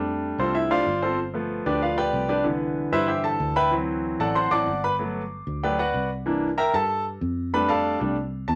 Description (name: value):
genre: latin, salsa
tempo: 189 BPM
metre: 4/4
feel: straight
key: unclear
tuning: A4 = 440 Hz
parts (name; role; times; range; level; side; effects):
- bright concert grand piano; accompaniment; 0.0-8.6 s; D3 to D6; -25 LUFS; equal; none
- fingered electric bass; bass; 0.0-8.6 s; G1 to G2; -34 LUFS; equal; none
room: wet studio ambience, RT60 0.5 s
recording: none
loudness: -25 LUFS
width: mono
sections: 0.0-8.6 A section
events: grand piano solo 0.0-8.6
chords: 0.0 F6; 1.2 G7; 2.5 Cmaj7; 3.7 D7; 5.0 Gmaj7; 6.3 C7; 7.5 F6